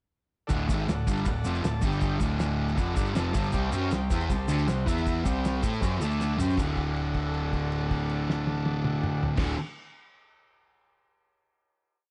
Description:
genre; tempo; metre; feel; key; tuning
garage rock duo or trio; 158 BPM; 4/4; straight; D mixolydian; A4 = 439 Hz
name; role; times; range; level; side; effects
overdriven combo organ; sustained chords; 0.5-9.5 s; E4 to A5; -40 LUFS; equal; none
fuzz guitar; riff; 0.5-9.6 s; D2 to A4; -30 LUFS; equal; distortion
hollow-body short-scale picked electric bass; bass; 0.5-9.5 s; D1 to A2; -35 LUFS; equal; tube saturation
cloth-damped thuddy drum kit; drums; 0.5-9.5 s; crash cymbal, kick drum, snare drum, toms; -34 LUFS; equal; none
tube shaker; percussion; 0.5-6.8 s; none; -50 LUFS; equal; none
room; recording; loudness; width
light reverb, studio reverb; nothing above 10.3 kHz; -28 LUFS; mono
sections
0.5-6.6 riff; 6.6-9.6 final chord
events
transistor combo organ fill 5.8-6.6; drum fill 6.2-6.6; held note 6.6-9.4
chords
0.5 D; 1.8 G5; 2.2 D; 3.5 C5; 4.9 E5; 5.3 C5; 6.0 D5; 6.4 C5; 6.6 D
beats
| 0.51 0.88 1.26 1.64 | 2.02 2.40 2.78 3.16 | 3.54 3.92 4.30 4.68 | 5.06 5.44 5.82 6.20 | 6.58 6.96 7.34 7.72 | 8.10 8.48 8.86 9.23

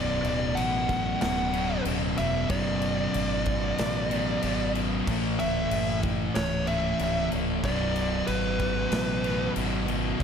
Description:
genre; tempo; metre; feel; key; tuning
stoner and doom metal; 94 BPM; 4/4; straight; B dorian; A4 = 445 Hz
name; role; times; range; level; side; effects
fuzz lead guitar; melody; 0.0-9.5 s; B4 to F#5; -30 LUFS; equal; distortion, slapback echo
distorted electric guitar; riff; 0.0-10.2 s; B1 to A3; -34 LUFS; equal; overdrive
thick fuzz guitar; riff; 0.0-10.2 s; B1 to A3; -32 LUFS; left 10 dB; distortion
thick fuzz guitar; riff; 0.0-10.2 s; B1 to A3; -32 LUFS; right 11 dB; distortion
growling fingered electric bass; bass; 0.0-10.2 s; B0 to A1; -32 LUFS; equal; overdrive
big rock drum kit; drums; 0.2-10.2 s; crash cymbal, kick drum, snare drum; -34 LUFS; left 1 dB; none
room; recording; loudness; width
studio reverb; none; -24 LUFS; side -7 dB against mid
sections
0.0-10.2 A section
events
none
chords
0.0 Bm; 5.1 A; 7.6 Bm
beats
0.57 1.22 1.86 | 2.50 3.14 3.79 4.43 | 5.07 5.71 6.35 6.99 | 7.63 8.28 8.92 9.56 | 10.20

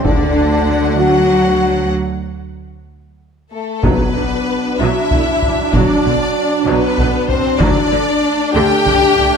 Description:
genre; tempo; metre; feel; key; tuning
cinematic, epic orchestral film score; 64 BPM (dotted quarters); 6/8; straight; B phrygian; A4 = 441 Hz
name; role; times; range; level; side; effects
warm symphonic violin section; second line; 0.0-9.4 s; A3 to F#5; -22 LUFS; left 3 dB; none
warm symphonic viola section; accompaniment; 0.0-9.4 s; D3 to D4; -21 LUFS; right 1 dB; none
mellow French horn section; sustained chords; 0.0-9.4 s; A3 to G4; -18 LUFS; left 5 dB; none
rich symphonic cello section; bass; 0.0-8.9 s; B2 to F#3; -22 LUFS; right 3 dB; none
taiko ensemble; drums; 0.0-0.6, 3.8-9.4 s; none; -19 LUFS; equal; none
rich studio violin section; melody; 0.1-9.4 s; A4 to G5; -20 LUFS; left 4 dB; none
warm trombone section; sustained chords; 0.1-9.4 s; F#3 to D4; -22 LUFS; right 7 dB; none
warm symphonic double bass section; bass; 0.1-8.9 s; B1 to D2; -22 LUFS; right 4 dB; none
timpani; percussion; 3.8-4.8 s; B2; -24 LUFS; left 2 dB; none
room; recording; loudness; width
moderate scoring stage reverb, RT60 1.8 s; none; -12 LUFS; side -6 dB against mid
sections
0.0-3.8 A section; 3.8-9.4 B section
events
break 1.9-3.8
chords
0.1 D; 3.8 Bm; 7.6 D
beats
| 0.05 0.98 | 1.93 2.88 | 3.84 4.80 | 5.73 6.67 | 7.60 8.55

